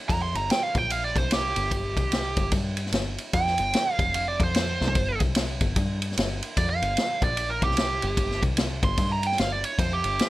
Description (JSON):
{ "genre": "blues rock power trio and southern rock", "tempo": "149 BPM", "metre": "4/4", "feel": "swing 62% on 8ths", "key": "G minor", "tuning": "A4 = 440 Hz", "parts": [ { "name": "biting lead guitar", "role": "second line", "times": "0.1-10.3 s", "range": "G4 to C6", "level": "-26 LUFS", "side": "right 3 dB", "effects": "overdrive" }, { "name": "overdriven picked electric bass", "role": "bass", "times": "0.1-10.2 s", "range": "F1 to G2", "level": "-29 LUFS", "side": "left 1 dB", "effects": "none" }, { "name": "vintage drum kit", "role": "drums", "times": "0.1-10.3 s", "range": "kick drum, ride cymbal, snare drum, toms", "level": "-26 LUFS", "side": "left 1 dB", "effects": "none" } ], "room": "little or no reverb", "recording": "none", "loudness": "-23 LUFS", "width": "side -16 dB against mid", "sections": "0.0-10.3 A section", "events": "lead electric guitar solo 0.0-10.3; drum fill 4.7", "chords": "0.0 Gm7; 0.7 Bb5; 1.1 C5; 1.5 N.C.; 1.9 C5; 2.3 Fsus2/G; 3.9 F5; 4.7 Gsus4; 5.2 N.C.; 5.6 Dmadd11/G (rootless); 7.2 Bb; 7.6 C5; 8.0 N.C.; 8.8 Gsus4" }